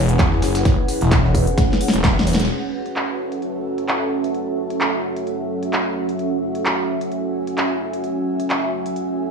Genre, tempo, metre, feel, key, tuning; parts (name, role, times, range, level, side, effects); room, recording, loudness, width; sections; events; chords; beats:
bass house; 130 BPM; 4/4; swing 55% on 16ths; F# minor; A4 = 439 Hz
dark analog pad; sustained chords; 0.0-9.3 s; F#3 to G#5; -26 LUFS; equal; chorus, phaser, vintage 12-bit sampler grit, sidechain pumping
phased detuned saw bass; bass; 0.0-2.5 s; E1 to E2; -19 LUFS; equal; phaser, tube saturation, sidechain pumping
airy breathy pad; texture; 0.0-9.3 s; C#4 to G#5; -24 LUFS; right 2 dB; chorus, sidechain pumping
big-room dance drum kit; drums; 0.1-9.1 s; crash cymbal, handclaps, hi-hat, snare drum; -22 LUFS; equal; overdrive, low-pass filter on hats, small room reverb, low-pass filter on snare, low-pass filter on cymbals
electronic kick drum; drums; 0.2-2.1 s; -18 LUFS; equal; overdrive, small room reverb
electronic snare drum and tambourine; drums; 0.2-2.5 s; -31 LUFS; equal; sidechain pumping on perc, high-pass filter on perc, small room reverb, high-pass filter on snare, sidechain pumping on hats, high-pass filter on hats, high-pass filter on room
moderate digital room reverb, RT60 1.0 s; studio reverb; -18 LUFS; side -5 dB against mid
0.0-2.5 A section; 2.5-9.3 B section
drum fill 1.6-2.5; band accent 2.3
0.0 E6; 2.5 F#m7
0.19 | 0.65 1.12 1.58 2.04 | 2.50 2.96 3.42 3.88 | 4.35 4.81 5.27 5.73 | 6.19 6.65 7.12 7.58 | 8.04 8.50 8.96